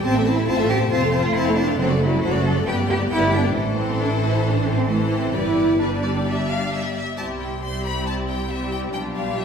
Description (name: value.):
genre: quick classical-period movement for string orchestra.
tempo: 135 BPM.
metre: 4/4.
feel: straight.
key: C major.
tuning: A4 = 436 Hz.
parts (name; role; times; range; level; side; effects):
clear chamber violin section; melody; 0.0-9.4 s; C5 to C6; -30 LUFS; left 5 dB; none.
rich studio violin section; second line; 0.0-9.4 s; E4 to F5; -29 LUFS; left 5 dB; none.
rich chamber viola section; accompaniment; 0.0-9.4 s; E3 to D4; -25 LUFS; left 1 dB; none.
warm chamber cello section; bass; 0.0-9.4 s; C2 to A4; -24 LUFS; right 2 dB; none.
warm chamber double bass section; bass; 0.0-9.4 s; F1 to C2; -24 LUFS; right 2 dB; none.
room: wet scoring stage reverb, RT60 1.6 s.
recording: heard from further back in the room.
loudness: -19 LUFS.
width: side -6 dB against mid.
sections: 0.0-7.2 A section; 7.2-9.4 B section.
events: none.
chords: 0.0 Am; 0.9 F; 1.8 D7/F#; 2.7 G; 3.5 Am; 5.3 G; 7.2 C; 8.9 G7/B.